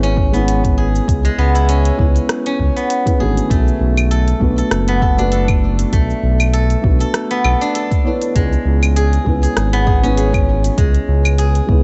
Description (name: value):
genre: organic downtempo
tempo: 99 BPM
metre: 4/4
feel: swing 55% on 16ths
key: B dorian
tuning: A4 = 440 Hz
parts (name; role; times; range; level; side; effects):
- felt-muted upright piano; accompaniment; 0.0-11.8 s; D3 to C#5; -24 LUFS; equal; sidechain pumping, digital delay
- steel-string zither; arpeggios; 0.0-11.8 s; G#3 to A4; -22 LUFS; equal; digital delay
- smooth synth bass; bass; 0.0-11.8 s; F#1 to C#2; -18 LUFS; equal; sidechain pumping
- afro-pop drum kit; drums; 0.0-11.7 s; cabasa, claves, hi-hat, rim click; -26 LUFS; equal; none
- electronic kick drum; drums; 0.2-11.8 s; none; -19 LUFS; equal; none
room: little or no reverb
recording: nothing above 8.0 kHz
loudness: -15 LUFS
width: mono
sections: 0.0-3.5 A section; 3.5-11.8 B section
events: none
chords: 0.0 C#m7; 3.5 Bm7; 8.4 C#m7